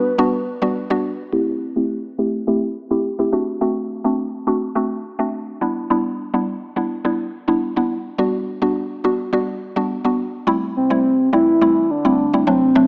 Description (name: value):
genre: afrobeats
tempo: 105 BPM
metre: 4/4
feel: straight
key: unclear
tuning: A4 = 440 Hz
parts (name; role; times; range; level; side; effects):
- soft octave-layered synth lead; melody; 0.0-0.8, 10.8-12.9 s; C4 to B4; -19 LUFS; equal; chorus, phaser, digital delay
- mallet-like synth pluck; accompaniment; 0.0-12.9 s; F#3 to G4; -21 LUFS; equal; chorus, phaser, low-pass filter
room: light reverb, digital ambience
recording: small speaker sound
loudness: -20 LUFS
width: mono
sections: 0.0-1.3 A section; 1.3-10.5 B section; 10.5-12.9 A section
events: filter sweep on synth pluck 1.3-10.5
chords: 0.0 Gmaj7; 1.3 Am7; 3.3 D7; 5.6 Em7; 8.2 Gmaj7; 10.5 Am7